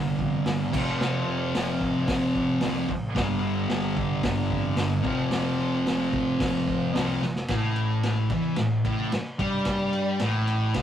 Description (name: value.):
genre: garage rock duo or trio.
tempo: 111 BPM.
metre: 4/4.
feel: straight.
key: A minor.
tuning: A4 = 438 Hz.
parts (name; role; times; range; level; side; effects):
fuzz guitar; riff; 0.0-10.8 s; F2 to G3; -24 LUFS; equal; distortion.
fuzz picked electric bass; bass; 0.0-10.8 s; F1 to G2; -34 LUFS; right 1 dB; overdrive.
vintage drum kit; drums; 0.2-10.8 s; crash cymbal, hi-hat, kick drum, ride cymbal, snare drum; -30 LUFS; equal; none.
room: moderate booth ambience, RT60 0.2 s.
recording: rough rehearsal-room recording, warm saturation.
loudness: -23 LUFS.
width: side -10 dB against mid.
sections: 0.0-7.5 A section; 7.5-10.8 B section.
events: drum fill 7.2.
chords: 0.0 G5; 0.7 F5; 3.2 G5; 5.1 F5; 7.5 A5.